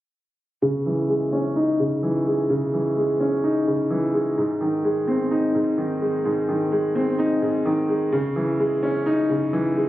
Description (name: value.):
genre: hip hop.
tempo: 128 BPM.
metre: 4/4.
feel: half-time.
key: C# harmonic minor.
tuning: A4 = 439 Hz.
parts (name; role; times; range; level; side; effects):
dark concert grand piano; accompaniment; 0.6-9.9 s; G#2 to D#4; -20 LUFS; equal; low-pass filter.
room: light reverb, studio ambience.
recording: recorded on a phone in the room, studio reverb.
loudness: -20 LUFS.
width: side -15 dB against mid.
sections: 0.6-9.9 A section.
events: filter sweep on grand piano 0.6-9.9.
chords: 0.6 C#madd9; 4.4 G#; 8.1 C#madd9.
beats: | 0.62 1.09 1.56 2.03 | 2.50 2.97 3.44 3.91 | 4.37 4.84 5.31 5.78 | 6.25 6.72 7.19 7.66 | 8.12 8.59 9.06 9.53.